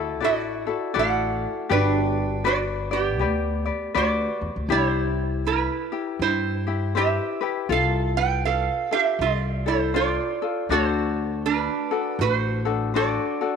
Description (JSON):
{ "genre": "Hawaiian", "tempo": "80 BPM", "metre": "4/4", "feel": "swing 62% on 8ths", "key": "G major, C major from 4.7 s", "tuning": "A4 = 440 Hz", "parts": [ { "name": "lap resonator guitar", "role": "melody", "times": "0.0-13.6 s", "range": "B3 to G5", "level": "-25 LUFS", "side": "right 9 dB", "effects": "none" }, { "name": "ukulele", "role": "accompaniment", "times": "0.0-13.6 s", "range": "D4 to D5", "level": "-26 LUFS", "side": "left 10 dB", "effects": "none" }, { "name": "upright bass", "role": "bass", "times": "0.0-13.2 s", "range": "G1 to G2", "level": "-27 LUFS", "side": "left 1 dB", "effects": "transformer saturation" } ], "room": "moderate plate reverb, RT60 2.7 s", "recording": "1960s-style stereo with parts hard left and right", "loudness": "-21 LUFS", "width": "side -6 dB against mid", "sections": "0.0-4.7 A section; 4.7-13.6 B section", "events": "none", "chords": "0.0 Dadd9; 1.7 Gmaj7; 4.7 Cmaj7; 7.7 F/C; 10.7 D7", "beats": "0.21 0.95 | 1.70 2.45 3.20 3.95 | 4.70 5.45 6.20 6.94 | 7.69 8.44 9.19 9.94 | 10.69 11.44 12.19 12.94" }